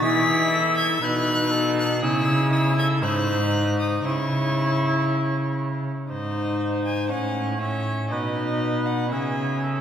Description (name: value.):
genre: classical, renaissance-style consort dance.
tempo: 119 BPM.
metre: 4/4.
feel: straight.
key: C# minor.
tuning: A4 = 436 Hz.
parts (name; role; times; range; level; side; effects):
rich violin; melody; 0.0-9.8 s; D#5 to B6; -28 LUFS; left 2 dB; none.
warm cor anglais; second line; 0.0-9.8 s; G#4 to C#5; -29 LUFS; right 3 dB; none.
warm viola; accompaniment; 0.0-9.8 s; C#4 to E4; -26 LUFS; left 2 dB; none.
rich cello; bass; 0.0-9.8 s; G#2 to E3; -25 LUFS; right 1 dB; none.
room: wet church reverb, RT60 2.8 s.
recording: none.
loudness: -21 LUFS.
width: side -9 dB against mid.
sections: 0.0-6.1 A section; 6.1-9.8 B section.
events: none.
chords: 0.0 E; 1.0 B; 2.0 C#m; 3.0 G#7; 4.0 C#m; 6.1 G#; 7.1 A; 8.1 B; 9.1 C#m.